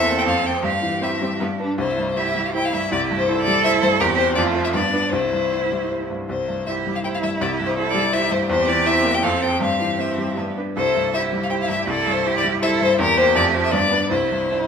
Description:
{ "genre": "quick classical-period movement for piano quartet", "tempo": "150-167 BPM", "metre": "3/4", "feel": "rubato", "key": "C major", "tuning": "A4 = 440 Hz", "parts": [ { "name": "rich violin", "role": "melody", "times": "0.0-14.7 s", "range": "Bb4 to G5", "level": "-22 LUFS", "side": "left 4 dB", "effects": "none" }, { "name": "clear cello", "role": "second line", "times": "0.0-14.6 s", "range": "D4 to A4", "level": "-24 LUFS", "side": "right 10 dB", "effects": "none" }, { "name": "warm violin", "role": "second line", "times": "0.0-14.7 s", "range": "G3 to E4", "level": "-28 LUFS", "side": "equal", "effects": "none" }, { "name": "bright baby grand piano", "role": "accompaniment", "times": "0.0-14.7 s", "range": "C2 to C5", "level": "-23 LUFS", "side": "equal", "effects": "none" } ], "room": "moderate scoring stage reverb, RT60 1.9 s", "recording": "none", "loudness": "-18 LUFS", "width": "side -7 dB against mid", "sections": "0.0-6.3 A section; 6.3-14.7 A section", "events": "none", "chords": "0.3 F; 0.6 C/G; 1.4 G; 1.8 C; 4.0 C/E; 4.4 F; 4.7 G; 5.1 C; 8.5 C7/E; 9.2 F; 9.6 C/G; 10.4 G; 10.8 C; 13.0 C7/E; 13.4 F; 13.7 G; 14.1 C", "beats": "0.26 | 0.64 1.03 1.41 | 1.79 2.17 2.54 | 2.92 3.28 3.65 | 4.01 4.37 4.75 | 5.13 5.53 5.92 | 6.31 6.68 7.05 | 7.42 7.78 8.14 | 8.50 8.86 9.23 | 9.62 10.00 10.39 | 10.77 11.15 11.52 | 11.88 12.25 12.62 | 12.99 13.35 13.72 | 14.11 14.51" }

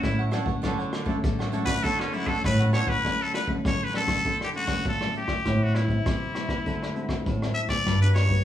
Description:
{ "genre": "samba and choro", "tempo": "100 BPM", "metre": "4/4", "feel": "straight", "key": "D major", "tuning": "A4 = 438 Hz", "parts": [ { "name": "trumpet with straight mute", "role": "melody", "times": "0.0-8.4 s", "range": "C#4 to E5", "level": "-28 LUFS", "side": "left 1 dB", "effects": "none" }, { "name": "nylon-string guitar", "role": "accompaniment", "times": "0.0-8.4 s", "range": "A2 to B4", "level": "-31 LUFS", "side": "left 1 dB", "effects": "none" }, { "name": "nylon-string guitar", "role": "bass", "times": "0.0-8.4 s", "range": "G2 to D3", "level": "-27 LUFS", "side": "equal", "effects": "none" }, { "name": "vintage brush drum kit", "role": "drums", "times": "0.0-8.4 s", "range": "hi-hat, kick drum, rim click", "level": "-29 LUFS", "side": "equal", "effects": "none" }, { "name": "cavaquinho", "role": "accompaniment", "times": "0.2-3.0 s", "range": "D4 to F#5", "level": "-34 LUFS", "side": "right 6 dB", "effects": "none" } ], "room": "wet large studio reverb, RT60 1.1 s", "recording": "band playing live in one room, small room ambience", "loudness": "-23 LUFS", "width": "side -11 dB against mid", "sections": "0.0-3.0 A section; 3.0-8.4 B section", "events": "muted trumpet solo 0.0-3.0", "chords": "0.0 Dmaj7; 5.5 Am7; 6.7 D7; 7.9 Gmaj7", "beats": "0.04 | 0.64 1.24 1.84 2.44 | 3.05 3.65 4.25 4.86 | 5.46 6.06 6.66 7.27 | 7.87" }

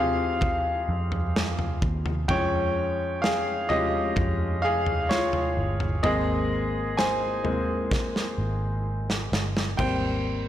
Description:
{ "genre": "pop ballad", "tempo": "64 BPM", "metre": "4/4", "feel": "straight", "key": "Ab major", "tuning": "A4 = 439 Hz", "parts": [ { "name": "clear upright piano", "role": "accompaniment", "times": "0.0-10.5 s", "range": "F3 to Ab5", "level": "-26 LUFS", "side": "left 1 dB", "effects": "none" }, { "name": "vintage muted fingered electric bass", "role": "bass", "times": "0.0-10.5 s", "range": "G1 to F2", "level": "-30 LUFS", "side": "equal", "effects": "none" }, { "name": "modern studio drum kit", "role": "drums", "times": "0.4-10.0 s", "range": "crash cymbal, kick drum, snare drum, toms", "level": "-29 LUFS", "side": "equal", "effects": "none" } ], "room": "light reverb, studio ambience", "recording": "blown-out, overdriven recording, overdrive", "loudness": "-23 LUFS", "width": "side -11 dB against mid", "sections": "0.0-9.8 A section", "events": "upright piano solo 0.0-9.8; drum fill 7.9-9.8", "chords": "0.0 Fsus2; 2.3 Db/F; 6.0 Abadd9; 9.8 Abmaj7", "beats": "0.42 1.35 | 2.29 3.23 4.17 5.10 | 6.04 6.98 7.92 8.85 | 9.79" }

